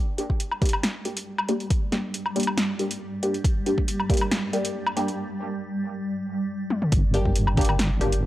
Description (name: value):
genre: deep dubstep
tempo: 138 BPM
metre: 4/4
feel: swing 53% on 16ths, half-time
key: G minor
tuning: A4 = 440 Hz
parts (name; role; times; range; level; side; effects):
- granular cloud pad; sustained chords; 1.1-8.3 s; G3; -31 LUFS; right 1 dB; built-in reverb
- filtered dub chord stab; stabs; 0.2-8.1 s; Bb3 to G4; -29 LUFS; left 1 dB; phaser, lush chorus, dub echo
- deep house drum kit; drums; 0.2-8.2 s; hi-hat, snare drum, toms, woodblock; -27 LUFS; equal; overdrive
- electronic kick drum; drums; 0.3-4.2, 6.9-7.7 s; none; -23 LUFS; equal; overdrive
- deep soft wobble bass; bass; 6.9-8.3 s; G1; -23 LUFS; equal; chorus, transformer saturation
room: light reverb, digital ambience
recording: dry, gritty hardware recording, transformer saturation, cassette tape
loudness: -23 LUFS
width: side -15 dB against mid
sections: 0.0-6.9 A section; 6.9-8.3 B section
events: build-up 0.0-6.9; filter sweep on synth stab 0.0-6.9; break 5.2-6.9; drum fill 6.7; drop 6.9-8.3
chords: 0.0 Gm